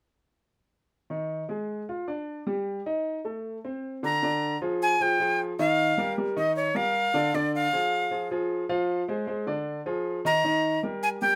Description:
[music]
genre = jazz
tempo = 154 BPM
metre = 4/4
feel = straight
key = unclear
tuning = A4 = 444 Hz
[part]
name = clear grand piano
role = accompaniment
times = 1.1-11.4 s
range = D3 to F5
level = -30 LUFS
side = equal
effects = none
[part]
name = breathy bright jazz flute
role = melody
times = 4.0-11.4 s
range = Db5 to Bb5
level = -27 LUFS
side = equal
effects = none
[sound]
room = moderate studio ambience, RT60 0.5 s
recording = none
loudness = -27 LUFS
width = mono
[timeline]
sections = 1.1-4.2 A section; 4.2-11.4 B section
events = none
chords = 1.1 Ebsus4; 1.9 G5; 2.7 Eb/G; 3.4 Bbmaj9; 4.2 Bb6; 5.8 Ebadd9; 7.3 Ddim; 8.9 Fm; 9.7 Ddim; 10.4 Eb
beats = | 1.11 1.50 1.89 2.28 | 2.67 3.06 3.45 3.84 | 4.23 4.62 5.00 5.39 | 5.78 6.17 6.56 6.95 | 7.34 7.72 8.11 8.50 | 8.89 9.28 9.67 10.06 | 10.45 10.83 11.22

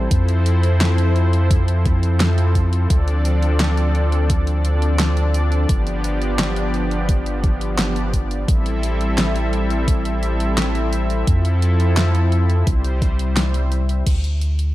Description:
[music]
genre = synthwave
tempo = 86 BPM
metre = 4/4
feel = straight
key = D dorian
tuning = A4 = 440 Hz
[part]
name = brassy analog pad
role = sustained chords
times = 0.0-14.1 s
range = F3 to E5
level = -23 LUFS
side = left 1 dB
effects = chorus, sidechain pumping
[part]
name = round analog bass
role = bass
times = 0.0-14.7 s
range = G1 to F2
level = -18 LUFS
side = equal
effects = none
[part]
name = electronic kick drum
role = drums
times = 0.1-14.2 s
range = none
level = -18 LUFS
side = equal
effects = overdrive
[part]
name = pop drum kit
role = drums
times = 0.1-14.7 s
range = crash cymbal, handclaps, hi-hat, snare drum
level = -24 LUFS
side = equal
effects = overdrive
[sound]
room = little or no reverb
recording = dark, warm production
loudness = -16 LUFS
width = side -16 dB against mid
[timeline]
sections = 0.0-14.1 A section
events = kick drops out 13.4-14.1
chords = 0.1 Fmaj7; 2.9 Dm7; 5.7 G7; 8.5 Am7; 11.3 Fmaj7; 12.7 C; 14.1 N.C.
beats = | 0.11 0.81 1.51 2.21 | 2.90 3.60 4.30 5.00 | 5.69 6.39 7.09 7.79 | 8.48 9.18 9.88 10.58 | 11.28 11.97 12.67 13.37 | 14.06

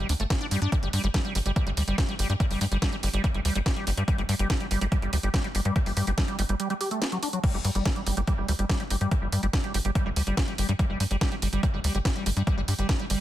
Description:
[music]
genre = psychedelic trance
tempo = 143 BPM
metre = 4/4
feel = straight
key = unclear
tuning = A4 = 440 Hz
[part]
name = liquid acid bass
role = riff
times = 0.0-13.2 s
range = F#3 to G4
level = -30 LUFS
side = moving between left 4 dB and right 5 dB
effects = chorus, auto-pan, cassette tape, sidechain pumping, tape echo
[part]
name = tight sequencer bass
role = bass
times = 0.0-13.2 s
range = G1 to G2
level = -27 LUFS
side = equal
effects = none
[part]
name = techno drum kit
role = drums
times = 0.1-13.2 s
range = crash cymbal, hi-hat, snare drum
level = -32 LUFS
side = right 1 dB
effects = overdrive, studio ambience
[part]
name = electronic kick drum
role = drums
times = 0.3-13.0 s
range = none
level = -27 LUFS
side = equal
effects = overdrive, studio ambience
[sound]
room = digital ambience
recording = dense, heavily limited modern master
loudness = -24 LUFS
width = side -13 dB against mid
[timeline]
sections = 0.0-7.4 A section; 7.4-13.2 A section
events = drop 0.0-7.4, 7.4-13.2; break 6.6-7.4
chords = 0.0 G5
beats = 0.30 | 0.72 1.14 1.56 1.98 | 2.40 2.82 3.24 3.66 | 4.08 4.50 4.92 5.34 | 5.76 6.18 6.60 7.02 | 7.44 7.86 8.28 8.70 | 9.11 9.53 9.95 10.37 | 10.79 11.21 11.63 12.05 | 12.47 12.89

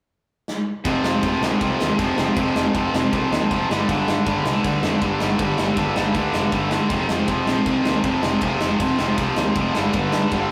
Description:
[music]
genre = punk rock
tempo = 158 BPM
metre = 4/4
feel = straight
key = unclear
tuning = A4 = 440 Hz
[part]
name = big rock drum kit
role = drums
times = 0.5-10.4 s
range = crash cymbal, kick drum, snare drum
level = -25 LUFS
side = equal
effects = none
[part]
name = distorted electric guitar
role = riff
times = 0.8-10.5 s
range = F2 to G3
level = -28 LUFS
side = equal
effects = distortion
[part]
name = tight distorted guitar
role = riff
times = 0.8-10.5 s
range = F2 to G3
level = -33 LUFS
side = equal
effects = none
[part]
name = distorted electric guitar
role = riff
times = 0.9-10.5 s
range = F2 to G3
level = -26 LUFS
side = equal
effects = overdrive
[part]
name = fuzz picked electric bass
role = bass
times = 0.9-10.4 s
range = F1 to G2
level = -30 LUFS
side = equal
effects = overdrive
[sound]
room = light reverb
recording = rough rehearsal-room recording, warm saturation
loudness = -21 LUFS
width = mono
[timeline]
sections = 0.9-10.5 A section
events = drum fill 0.5-0.9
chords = 0.0 N.C.; 0.9 F5; 3.7 G5; 6.9 F5; 9.8 G5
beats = 0.09 0.47 | 0.85 1.23 1.61 1.99 | 2.37 2.75 3.13 3.51 | 3.88 4.26 4.64 5.02 | 5.40 5.78 6.16 6.54 | 6.91 7.29 7.67 8.05 | 8.43 8.81 9.18 9.56 | 9.94 10.32

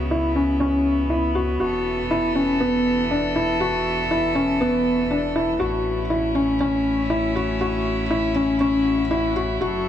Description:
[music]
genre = electronica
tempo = 120 BPM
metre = 4/4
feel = straight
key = unclear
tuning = A4 = 440 Hz
[part]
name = rich string quartet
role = sustained chords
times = 0.0-9.9 s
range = C#3 to A4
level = -26 LUFS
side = equal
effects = none
[part]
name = warm sub bass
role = bass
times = 0.0-9.9 s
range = E1 to C#2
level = -30 LUFS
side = equal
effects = none
[part]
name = felt-muted upright piano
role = riff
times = 0.1-9.9 s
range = B3 to F#4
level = -21 LUFS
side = left 1 dB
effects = low-pass filter, tape echo
[part]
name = swell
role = sound effects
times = 8.7-9.6 s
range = none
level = -37 LUFS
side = equal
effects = none
[sound]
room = moderate huge ambient reverb, RT60 8.5 s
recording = none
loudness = -19 LUFS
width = side -10 dB against mid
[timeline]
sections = 0.0-9.9 A section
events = swell 8.7-9.6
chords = 0.0 C#m7; 1.6 Esus4; 5.6 A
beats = 0.11 0.61 1.11 | 1.61 2.11 2.61 3.11 | 3.61 4.11 4.61 5.11 | 5.61 6.11 6.61 7.11 | 7.61 8.11 8.61 9.11 | 9.61

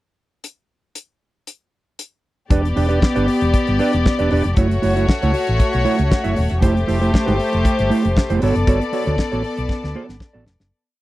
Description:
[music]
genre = disco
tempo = 117 BPM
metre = 4/4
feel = straight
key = E dorian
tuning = A4 = 442 Hz
[part]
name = damped 70s drum kit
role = drums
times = 0.4-10.7 s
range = hi-hat, kick drum, snare drum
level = -18 LUFS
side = equal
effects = none
[part]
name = warm studio string section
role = second line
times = 2.5-10.7 s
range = A3 to D5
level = -20 LUFS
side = left 2 dB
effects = none
[part]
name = mellow electric guitar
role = accompaniment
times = 2.5-10.6 s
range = A3 to E5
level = -20 LUFS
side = right 4 dB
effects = none
[part]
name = hollow-body short-scale fingered electric bass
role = bass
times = 2.5-10.7 s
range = D#1 to D2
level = -20 LUFS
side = equal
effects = none
[sound]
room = little or no reverb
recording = dry, close 1970s-style studio recording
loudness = -15 LUFS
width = side -17 dB against mid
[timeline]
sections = 0.4-2.5 pickup bar; 2.5-10.7 verse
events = fade-out 8.7-10.7; drum fill 9.7-10.7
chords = 0.4 N.C.; 2.5 Em7; 4.6 F#m7; 6.6 Fmaj9; 8.4 Gmaj9#11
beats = | 0.44 0.96 1.48 1.99 | 2.51 3.03 3.54 4.06 | 4.57 5.09 5.60 6.11 | 6.63 7.14 7.65 8.16 | 8.67 9.18 9.69 10.20

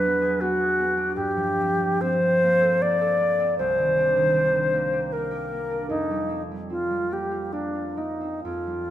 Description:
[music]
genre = classical, impressionist duo for alto flute and harp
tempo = 65-84 BPM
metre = 3/4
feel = rubato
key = unclear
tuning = A4 = 440 Hz
[part]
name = bright alto flute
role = melody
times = 0.0-8.9 s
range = D4 to D5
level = -22 LUFS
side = equal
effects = none
[part]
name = concert harp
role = accompaniment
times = 0.0-8.9 s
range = C2 to A4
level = -29 LUFS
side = right 1 dB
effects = none
[sound]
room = wet recital hall reverb, RT60 1.8 s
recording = none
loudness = -21 LUFS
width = side -12 dB against mid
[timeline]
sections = 0.0-8.9 A section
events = none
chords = 0.0 E9; 1.2 Gm11; 3.6 Cm9; 5.9 Fsus24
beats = 0.41 | 1.17 2.02 2.82 | 3.59 4.36 5.13 | 5.92 6.72 7.55 | 8.45

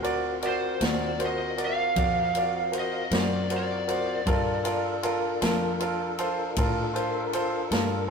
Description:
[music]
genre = slow blues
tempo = 52 BPM (dotted quarters)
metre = 12/8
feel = straight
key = unclear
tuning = A4 = 440 Hz
[part]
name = clear concert grand piano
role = accompaniment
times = 0.0-8.0 s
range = F4 to D5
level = -29 LUFS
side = right 2 dB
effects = none
[part]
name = tonewheel organ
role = sustained chords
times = 0.0-8.1 s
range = C4 to A#4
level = -33 LUFS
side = left 2 dB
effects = chorus vibrato, slow rotary speaker
[part]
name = fingered electric bass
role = bass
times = 0.0-8.1 s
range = D2 to A2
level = -33 LUFS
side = left 1 dB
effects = none
[part]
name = swinging big-band drum kit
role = drums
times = 0.0-7.9 s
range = kick drum, ride cymbal, snare drum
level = -32 LUFS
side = left 1 dB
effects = none
[part]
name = lead guitar through a small cranked amp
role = melody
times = 0.5-5.0 s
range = C5 to E#5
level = -30 LUFS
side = right 1 dB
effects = overdrive, tape echo
[sound]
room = moderate stone room reverb, RT60 1.0 s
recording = rough rehearsal-room recording, tube saturation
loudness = -24 LUFS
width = side -5 dB against mid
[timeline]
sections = 0.0-8.1 A section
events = lead electric guitar solo 0.0-8.1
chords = 0.0 D7alt; 4.3 Gm7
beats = 0.82 1.97 3.12 | 4.27 5.42 6.57 7.72

